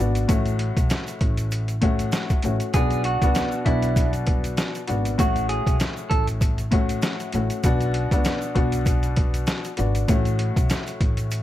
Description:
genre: hip hop, boom-bap hip-hop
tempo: 98 BPM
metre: 4/4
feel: swing 57% on 16ths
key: F# minor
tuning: A4 = 438 Hz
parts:
  - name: warm upright piano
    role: accompaniment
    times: 0.0-11.4 s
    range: A2 to F#4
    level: -26 LUFS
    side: left 3 dB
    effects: high-pass filter, low-pass filter
  - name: upright bass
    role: bass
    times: 0.0-11.4 s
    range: G#1 to C#2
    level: -25 LUFS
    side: equal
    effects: none
  - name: egg shaker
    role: percussion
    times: 0.0-11.4 s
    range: none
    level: -43 LUFS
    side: right 10 dB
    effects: none
  - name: trip hop sampler-style drum kit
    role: drums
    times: 0.2-11.4 s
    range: hi-hat, kick drum, snare drum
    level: -23 LUFS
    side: equal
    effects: overdrive
  - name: clean electric guitar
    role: melody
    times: 2.7-6.3 s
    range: E4 to A4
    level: -27 LUFS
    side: right 2 dB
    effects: high-pass filter, low-pass filter, ping-pong delay
room: small room ambience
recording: vinyl crackle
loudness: -20 LUFS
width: side -13 dB against mid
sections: 0.0-11.4 A section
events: none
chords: 0.3 F#m/A; 2.7 Bm; 5.2 F#m/A; 7.6 Bm; 10.1 F#m/A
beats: | 0.29 0.90 1.52 2.13 | 2.74 3.35 3.96 4.58 | 5.19 5.80 6.41 7.03 | 7.64 8.25 8.86 9.47 | 10.09 10.70 11.31

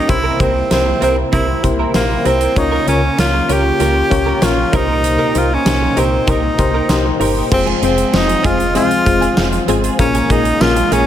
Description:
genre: 1980s-style pop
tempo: 97 BPM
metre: 4/4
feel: straight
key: F minor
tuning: A4 = 440 Hz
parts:
  - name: clear tenor saxophone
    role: melody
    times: 0.0-11.1 s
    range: Bb3 to G4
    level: -17 LUFS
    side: equal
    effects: digital delay
  - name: FM electric piano with tremolo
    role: accompaniment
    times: 0.0-11.1 s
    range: Bb2 to Eb5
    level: -19 LUFS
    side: left 6 dB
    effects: none
  - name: warm analog pad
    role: sustained chords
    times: 0.0-11.1 s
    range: Bb2 to Ab4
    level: -25 LUFS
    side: right 1 dB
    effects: chorus
  - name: direct-recorded clean electric guitar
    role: riff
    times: 0.0-11.1 s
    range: Bb3 to Bb4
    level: -24 LUFS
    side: right 7 dB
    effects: ensemble chorus, digital delay
  - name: solid FM bass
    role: bass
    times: 0.1-11.1 s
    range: F1 to Db2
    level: -19 LUFS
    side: right 1 dB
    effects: none
  - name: huge arena drum kit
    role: drums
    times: 0.1-11.1 s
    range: crash cymbal, hi-hat, kick drum, snare drum, tambourine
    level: -19 LUFS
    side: right 1 dB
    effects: gated reverb
room: light reverb, small room reverb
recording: none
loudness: -12 LUFS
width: side -10 dB against mid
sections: 0.0-7.5 A section; 7.5-11.1 B section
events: none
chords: 0.1 C7; 2.6 Bbm/Db; 4.7 Cm7; 7.5 Fm; 10.0 Bbm7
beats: | 0.09 0.71 1.33 1.95 | 2.57 3.19 3.80 4.42 | 5.04 5.66 6.28 6.90 | 7.51 8.13 8.75 9.37 | 9.99 10.61

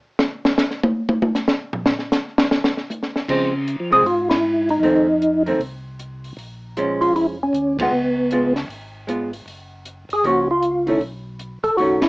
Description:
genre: soul jazz organ trio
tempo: 155 BPM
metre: 4/4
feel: swing 64% on 8ths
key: Db major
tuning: A4 = 441 Hz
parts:
  - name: compact cocktail drum kit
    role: drums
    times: 0.2-12.1 s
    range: crash cymbal, hi-hat, kick drum, ride cymbal, snare drum, toms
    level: -20 LUFS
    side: equal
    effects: none
  - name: vintage hollow-body jazz guitar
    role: accompaniment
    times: 3.3-12.0 s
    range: Eb3 to F4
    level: -21 LUFS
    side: right 1 dB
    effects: none
  - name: mellow tonewheel organ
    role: bass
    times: 3.3-12.1 s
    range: F1 to F3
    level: -31 LUFS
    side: equal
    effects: slow rotary speaker
  - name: percussive tonewheel organ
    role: melody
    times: 3.9-12.1 s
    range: Cb4 to A4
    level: -16 LUFS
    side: equal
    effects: chorus vibrato, slow rotary speaker
room: moderate small room ambience, RT60 0.5 s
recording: worn, warbling old tape, cassette tape, warbly pitch drift, small speaker sound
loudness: -17 LUFS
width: side -24 dB against mid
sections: 0.0-3.3 A section; 3.3-12.1 B section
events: drum solo 0.0-3.3; band accent 4.2, 7.7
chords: 0.0 N.C.; 3.3 Dbmaj7; 4.8 F7; 6.4 Bbm7; 7.9 Db7; 9.5 Gbmaj7; 11.0 Cb9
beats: | 0.19 0.58 0.96 1.35 | 1.73 2.12 2.50 2.89 | 3.28 3.66 4.05 4.43 | 4.82 5.21 5.59 5.98 | 6.37 6.75 7.14 7.53 | 7.91 8.30 8.69 9.07 | 9.46 9.85 10.23 10.62 | 11.00 11.39 11.77

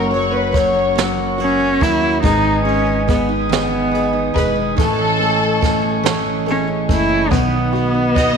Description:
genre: six-eight pop ballad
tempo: 47 BPM (dotted quarters)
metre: 6/8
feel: straight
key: E major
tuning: A4 = 438 Hz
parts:
  - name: warm studio violin section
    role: second line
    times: 0.0-8.4 s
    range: A4 to D#5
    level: -19 LUFS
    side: left 2 dB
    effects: none
  - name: warm concert grand piano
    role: accompaniment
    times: 0.0-8.4 s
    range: F#3 to F#4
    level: -23 LUFS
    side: left 12 dB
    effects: none
  - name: mellow tonewheel organ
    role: sustained chords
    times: 0.0-8.4 s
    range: A3 to D#6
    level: -22 LUFS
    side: right 1 dB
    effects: slow rotary speaker
  - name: picked steel-string acoustic guitar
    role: arpeggios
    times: 0.0-8.4 s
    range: D#3 to G#4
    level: -24 LUFS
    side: right 12 dB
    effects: none
  - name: upright bass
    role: bass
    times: 0.0-8.4 s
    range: E1 to D#2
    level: -24 LUFS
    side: equal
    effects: none
  - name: jazz brush drum kit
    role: drums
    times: 0.1-8.4 s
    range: kick drum, ride cymbal, snare drum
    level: -22 LUFS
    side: right 3 dB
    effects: none
  - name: warm cello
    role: melody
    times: 1.4-8.4 s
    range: B3 to E4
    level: -19 LUFS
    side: equal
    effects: none
room: light reverb, studio reverb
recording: 1960s-style stereo with parts hard left and right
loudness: -14 LUFS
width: side -6 dB against mid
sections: 0.0-8.4 A section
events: none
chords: 0.0 F#; 2.2 Emaj7/G#; 4.8 Amaj7; 7.3 B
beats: 0.97 | 2.24 3.50 | 4.77 6.04 | 7.31

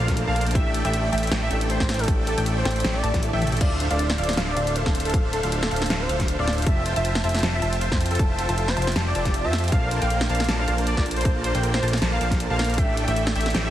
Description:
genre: future bass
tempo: 157 BPM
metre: 4/4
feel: swing 55% on 16ths, half-time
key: D minor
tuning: A4 = 440 Hz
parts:
  - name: warm velvety synth lead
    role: melody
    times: 0.0-13.7 s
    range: A4 to F5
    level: -28 LUFS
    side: equal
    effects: chorus, sidechain pumping, dub echo
  - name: dark grand piano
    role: accompaniment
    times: 0.0-3.6 s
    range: F3 to A4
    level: -34 LUFS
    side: equal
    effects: vintage 12-bit sampler grit, sidechain pumping, ping-pong delay
  - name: wide unison pluck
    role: arpeggios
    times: 0.0-13.7 s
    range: F5 to A5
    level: -35 LUFS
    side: right 1 dB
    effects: sidechain pumping, ping-pong delay
  - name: supersaw chords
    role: riff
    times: 0.0-13.7 s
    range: A3 to A5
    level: -29 LUFS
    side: right 1 dB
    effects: lush chorus, vintage 12-bit sampler grit, sidechain pumping
  - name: fat analog bass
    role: bass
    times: 0.0-13.7 s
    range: D1 to F2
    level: -25 LUFS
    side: equal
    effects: sidechain pumping
  - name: big-room dance drum kit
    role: drums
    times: 0.1-13.6 s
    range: crash cymbal, hi-hat, snare drum, toms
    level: -28 LUFS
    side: equal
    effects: studio reverb
  - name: electronic kick drum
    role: drums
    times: 0.1-12.9 s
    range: none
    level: -23 LUFS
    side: equal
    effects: studio reverb
  - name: concert harp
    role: arpeggios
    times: 3.6-13.7 s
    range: C4 to A4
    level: -36 LUFS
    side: right 1 dB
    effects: none
room: little or no reverb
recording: heavily compressed radio sound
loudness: -20 LUFS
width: side -12 dB against mid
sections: 0.0-3.6 A section; 3.6-13.7 A section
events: drop 0.0-3.6, 3.6-13.7; drum fill 3.3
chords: 0.0 Bbmaj7; 0.6 A7sus4; 3.6 Dm7; 6.7 Fmaj9; 9.7 Bbmaj7; 12.8 A7sus4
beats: 0.17 | 0.55 0.93 1.32 1.70 | 2.08 2.46 2.85 3.23 | 3.61 3.99 4.37 4.76 | 5.14 5.52 5.90 6.29 | 6.67 7.05 7.43 7.81 | 8.20 8.58 8.96 9.34 | 9.72 10.11 10.49 10.87 | 11.25 11.63 12.02 12.40 | 12.78 13.16 13.55

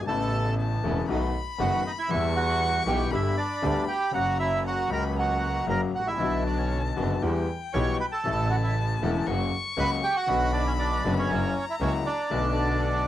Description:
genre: tango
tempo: 118 BPM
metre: 4/4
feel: rubato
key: B minor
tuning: A4 = 441 Hz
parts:
  - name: warm violin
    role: second line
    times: 0.0-13.1 s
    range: F#5 to C#6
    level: -34 LUFS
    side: left 5 dB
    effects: none
  - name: clear upright piano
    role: accompaniment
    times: 0.0-13.1 s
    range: E1 to G4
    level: -29 LUFS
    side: left 5 dB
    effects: none
  - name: rich double bass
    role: bass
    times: 0.0-13.0 s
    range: E1 to E2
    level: -29 LUFS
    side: right 2 dB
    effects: none
  - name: bandoneon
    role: melody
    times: 0.1-13.1 s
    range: C#4 to C#6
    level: -27 LUFS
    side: right 3 dB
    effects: cassette tape
  - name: clear studio string section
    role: stabs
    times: 0.1-13.0 s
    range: F#3 to A4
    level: -40 LUFS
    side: right 7 dB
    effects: none
room: light reverb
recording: home recording on cassette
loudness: -24 LUFS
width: side -12 dB against mid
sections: 0.0-13.1 A section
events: none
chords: 0.1 Aadd9; 1.1 B7; 2.1 Em; 3.1 G; 4.1 F#; 6.2 Bm; 7.2 Em; 8.3 A; 9.3 F#; 10.3 Bm; 11.3 F#7; 12.3 Bm7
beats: | 0.08 0.58 1.09 1.59 | 2.10 2.60 3.11 3.62 | 4.13 4.65 5.16 5.68 | 6.20 6.71 7.23 7.74 | 8.25 8.76 9.27 9.78 | 10.29 10.80 11.30 11.81 | 12.32 12.83

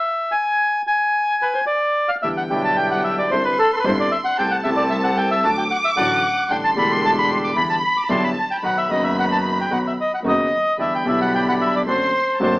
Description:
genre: tango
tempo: 112 BPM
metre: 4/4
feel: rubato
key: E minor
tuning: A4 = 443 Hz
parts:
  - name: bandoneon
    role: melody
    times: 0.0-12.6 s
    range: A4 to D6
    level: -19 LUFS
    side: equal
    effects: none
  - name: warm studio violin section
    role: second line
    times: 0.0-12.6 s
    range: G5 to D6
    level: -26 LUFS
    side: equal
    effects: none
  - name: warm concert grand piano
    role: accompaniment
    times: 2.2-12.6 s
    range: E1 to F#4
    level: -24 LUFS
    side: left 1 dB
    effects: none
  - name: bandoneon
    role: stabs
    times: 2.2-12.6 s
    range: B3 to C5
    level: -27 LUFS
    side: right 1 dB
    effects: none
  - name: warm double bass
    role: bass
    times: 2.2-12.6 s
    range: E1 to E2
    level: -28 LUFS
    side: right 1 dB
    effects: none
room: moderate stone room reverb, RT60 1.0 s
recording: band playing live in one room, AM radio sound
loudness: -17 LUFS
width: side -21 dB against mid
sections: 0.0-2.2 A section; 2.2-12.6 B section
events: stop 0.0-2.2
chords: 0.0 N.C.; 2.2 Em7; 3.3 Cadd9; 4.4 Am7/C; 5.4 D; 6.5 A7sus4; 7.6 Em7; 8.6 B; 10.8 Em7; 11.9 D7/F#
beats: | 0.04 0.58 1.13 1.68 | 2.23 2.77 3.31 3.84 | 4.38 4.92 5.45 5.97 | 6.50 7.03 7.56 8.10 | 8.63 9.17 9.71 10.24 | 10.79 11.33 11.87 12.41

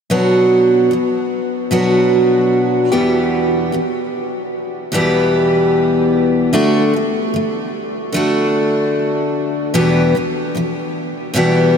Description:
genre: pop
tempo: 75 BPM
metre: 4/4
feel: swing 55% on 16ths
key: unclear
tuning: A4 = 440 Hz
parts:
  - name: picked steel-string acoustic guitar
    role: accompaniment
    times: 0.1-11.8 s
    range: E2 to G4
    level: -13 LUFS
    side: equal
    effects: none
room: wet huge ambient reverb, RT60 8.1 s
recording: dreamy mix soaked in reverb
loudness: -13 LUFS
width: side -7 dB against mid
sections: 0.1-11.8 A section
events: none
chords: 0.1 Bm; 2.9 Em; 6.5 D; 9.7 Em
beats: | 0.11 0.91 1.72 2.52 | 3.32 4.12 4.93 5.73 | 6.53 7.33 8.13 8.94 | 9.74 10.54 11.34

